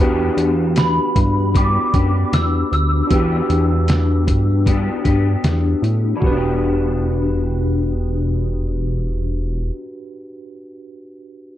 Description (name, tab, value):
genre	indie pop, bedroom pop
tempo	77 BPM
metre	4/4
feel	straight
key	E minor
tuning	A4 = 440 Hz
part	bright tine electric piano	accompaniment	0.0-11.6 s	D4 to B4	-25 LUFS	right 4 dB	slow stereo tremolo, cassette tape
part	electric guitar through a small old amp	accompaniment	0.0-9.9 s	E3 to G4	-23 LUFS	left 6 dB	ensemble chorus, vibrato effect
part	chorused synth bass	bass	0.0-9.7 s	E1 to A2	-18 LUFS	equal	none
part	trip hop sampler-style drum kit	drums	0.4-6.4 s	hi-hat, kick drum, snare drum	-19 LUFS	equal	overdrive
part	glockenspiel with soft plastic mallets	melody	0.8-5.4 s	B5 to E6	-23 LUFS	equal	ensemble chorus, tape echo
room	little or no reverb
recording	dry, close 1970s-style studio recording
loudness	-15 LUFS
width	side -12 dB against mid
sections	0.0-6.2 A section; 6.2-9.3 B section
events	none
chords	0.0 Em7